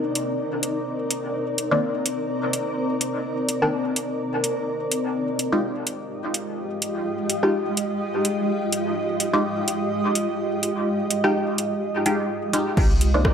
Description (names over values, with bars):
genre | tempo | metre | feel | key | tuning
dub techno | 126 BPM | 4/4 | swing 56% on 16ths | unclear | A4 = 435 Hz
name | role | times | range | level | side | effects
granular cloud pad | sustained chords | 0.0-13.3 s | Ab3 to Eb5 | -24 LUFS | equal | built-in reverb, sidechain pumping
deep house drum kit | drums | 0.2-13.3 s | crash cymbal, hi-hat, rim click | -25 LUFS | equal | overdrive
filtered dub chord stab | stabs | 1.7-13.2 s | Eb3 to G4 | -25 LUFS | equal | chorus, phaser, sidechain pumping, dub echo
warm sub bass | bass | 12.8-13.3 s | C2 | -21 LUFS | equal | tube saturation, sidechain pumping
electronic kick drum | drums | 12.8-13.3 s | none | -19 LUFS | equal | none
warbly lo-fi synth keys | riff | 13.2-13.3 s | C4 to D5 | -30 LUFS | left 2 dB | chorus, sidechain pumping
room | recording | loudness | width
moderate lush hall reverb, RT60 1.6 s | none | -22 LUFS | side -7 dB against mid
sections
0.0-12.8 A section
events
none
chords
0.0 Cm9; 5.2 Fm9; 12.8 Cm9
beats
0.39 0.87 | 1.34 1.82 2.30 2.77 | 3.25 3.72 4.20 4.68 | 5.15 5.63 6.11 6.58 | 7.06 7.53 8.01 8.49 | 8.96 9.44 9.91 10.39 | 10.87 11.34 11.82 12.30 | 12.77 13.25